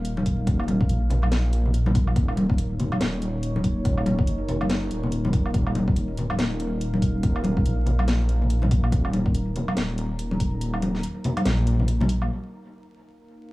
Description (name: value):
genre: deep dubstep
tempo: 142 BPM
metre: 4/4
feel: swing 59% on 16ths, half-time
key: unclear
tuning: A4 = 440 Hz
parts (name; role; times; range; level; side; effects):
- deep dark ambient pad; sustained chords; 0.0-13.5 s; Eb4 to Bb5; -35 LUFS; right 1 dB; chorus, built-in reverb
- dark detuned saw bass; bass; 0.0-12.3 s; Eb1 to Bb1; -24 LUFS; equal; none
- garage drum kit; drums; 0.0-12.3 s; hi-hat, snare drum, woodblock; -31 LUFS; equal; low-pass filter on hats, low-pass filter on toms, low-pass filter on perc, low-pass filter on snare
- congas; percussion; 0.2-12.1 s; none; -28 LUFS; left 1 dB; dub echo
- electronic kick drum; drums; 0.3-10.5 s; none; -23 LUFS; equal; none
room: little or no reverb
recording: dry, gritty hardware recording, transformer saturation, vinyl crackle, small room ambience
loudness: -21 LUFS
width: side -19 dB against mid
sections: 0.0-12.3 A section; 12.3-13.5 B section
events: kick drops out 10.6-12.3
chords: 0.0 Eb5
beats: 0.05 | 0.47 0.90 1.32 1.74 | 2.16 2.58 3.01 3.43 | 3.85 4.28 4.70 5.12 | 5.54 5.96 6.39 6.81 | 7.23 7.66 8.08 8.50 | 8.92 9.35 9.77 10.19 | 10.61 11.04 11.46 11.88 | 12.30 12.73 13.15